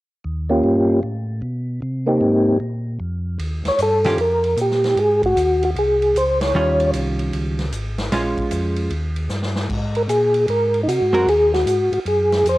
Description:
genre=soul jazz organ trio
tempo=152 BPM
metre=4/4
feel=swing 65% on 8ths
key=Eb mixolydian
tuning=A4 = 440 Hz
part: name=mellow tonewheel organ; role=bass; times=0.2-12.6 s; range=Ab1 to C3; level=-24 LUFS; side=equal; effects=slow rotary speaker
part: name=percussive tonewheel organ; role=melody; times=0.5-6.9, 10.0-12.6 s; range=Bb3 to Db5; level=-16 LUFS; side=equal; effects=slow rotary speaker, chorus vibrato, cassette tape
part: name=swinging big-band drum kit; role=drums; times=3.4-12.6 s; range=crash cymbal, hi-hat, kick drum, ride cymbal, snare drum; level=-30 LUFS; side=equal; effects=none
part: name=hollow-body jazz guitar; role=accompaniment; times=4.1-4.2, 6.5-11.3 s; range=Eb3 to Bb4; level=-22 LUFS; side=right 2 dB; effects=none
room=moderate spring reverb, RT60 1.2 s, small room ambience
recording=home recording on cassette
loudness=-17 LUFS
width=side -17 dB against mid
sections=0.2-3.4 A section; 3.4-12.6 B section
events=band accent 6.3; drum fill 9.3-9.7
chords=0.2 Eb7; 1.0 Asus2; 1.8 Abmaj9; 2.6 Bb5; 3.4 Ebadd9; 5.0 Ab7; 6.5 Eb9; 8.1 Bbm7; 8.9 Eb; 9.7 Ab9

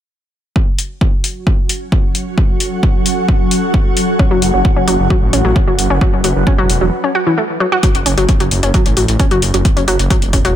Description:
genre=driving peak-time techno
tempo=132 BPM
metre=4/4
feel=straight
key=F# minor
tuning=A4 = 440 Hz
part: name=swarming drone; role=drone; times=1.4-6.9 s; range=F#3 to F#4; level=-21 LUFS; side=equal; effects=built-in reverb, sidechain pumping
part: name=electronic kick drum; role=drums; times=0.6-10.4 s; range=none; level=-14 LUFS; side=equal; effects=none
part: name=ethereal airy pad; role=texture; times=2.2-10.6 s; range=C#4 to F#5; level=-22 LUFS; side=right 1 dB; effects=ensemble chorus, built-in reverb, phaser, sidechain pumping
part: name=electronic hi-hat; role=drums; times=0.8-10.5 s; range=none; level=-19 LUFS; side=left 2 dB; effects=none
part: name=analog pluck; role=riff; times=4.2-10.5 s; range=E3 to F#4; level=-16 LUFS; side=equal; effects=chorus, tube saturation, sidechain pumping, ping-pong delay
part: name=detuned saw bass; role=bass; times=4.3-10.5 s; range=E1 to A1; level=-16 LUFS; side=equal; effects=sidechain pumping
room=little or no reverb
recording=none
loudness=-11 LUFS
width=side -11 dB against mid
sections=0.6-7.8 A section; 7.8-10.6 B section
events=fade-in on ambient pad 0.6-7.8; break 6.9-7.8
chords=0.6 F#m

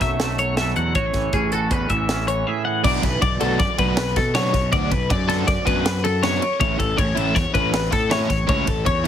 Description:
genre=math rock and midwest emo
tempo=160 BPM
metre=5/4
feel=straight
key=unclear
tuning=A4 = 440 Hz
part: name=twangy electric guitar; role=accompaniment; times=0.0-4.7 s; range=F#2 to A4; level=-28 LUFS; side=right 11 dB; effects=wide subtle chorus
part: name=twelve-string electric guitar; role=arpeggios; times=0.0-9.1 s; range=G#4 to F#5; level=-22 LUFS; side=left 4 dB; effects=lush chorus, plate reverb
part: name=fuzz fingered electric bass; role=bass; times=0.0-9.1 s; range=A1 to B2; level=-24 LUFS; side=equal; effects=overdrive
part: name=crisp fusion drum kit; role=drums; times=0.0-9.1 s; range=crash cymbal, hi-hat, kick drum, ride cymbal, snare drum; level=-24 LUFS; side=equal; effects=none
part: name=biting overdriven guitar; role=riff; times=2.8-9.1 s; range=E3 to F#4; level=-25 LUFS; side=right 2 dB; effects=none
room=light reverb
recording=heavily compressed radio sound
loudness=-18 LUFS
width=side -9 dB against mid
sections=0.0-2.8 A section; 2.8-9.1 B section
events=none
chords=0.0 B9sus4; 1.0 Amaj7; 2.8 Bm11; 6.6 Aadd9

